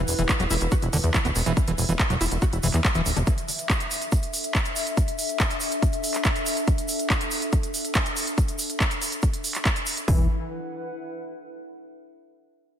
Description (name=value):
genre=psychedelic trance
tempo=141 BPM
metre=4/4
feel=straight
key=unclear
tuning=A4 = 440 Hz
part: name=plucky analog bass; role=bass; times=0.0-3.2, 10.1-10.3 s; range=D1 to E2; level=-25 LUFS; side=equal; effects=none
part: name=warbly tape-like pad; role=texture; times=0.0-11.7 s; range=D4 to F#5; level=-32 LUFS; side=left 1 dB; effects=chorus, built-in reverb, sidechain pumping
part: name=techno drum kit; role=drums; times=0.1-10.1 s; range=handclaps, hi-hat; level=-27 LUFS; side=right 1 dB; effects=small room ambience
part: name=tube shaker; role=percussion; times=0.1-10.1 s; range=none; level=-34 LUFS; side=right 2 dB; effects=none
part: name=overdriven acid bass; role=riff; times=0.2-3.2, 10.1-10.3 s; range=D3 to F#4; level=-29 LUFS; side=moving between left 4 dB and right 2 dB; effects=auto-pan, sidechain pumping, analog delay
part: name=techno drum kit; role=drums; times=0.3-10.2 s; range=hi-hat, kick drum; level=-23 LUFS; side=equal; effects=small room ambience
room=light reverb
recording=none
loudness=-22 LUFS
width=side -10 dB against mid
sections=0.0-10.1 A section; 10.1-11.8 B section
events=fade-out on ambient pad 0.0-10.1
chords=0.0 E5; 3.3 D5; 10.1 E5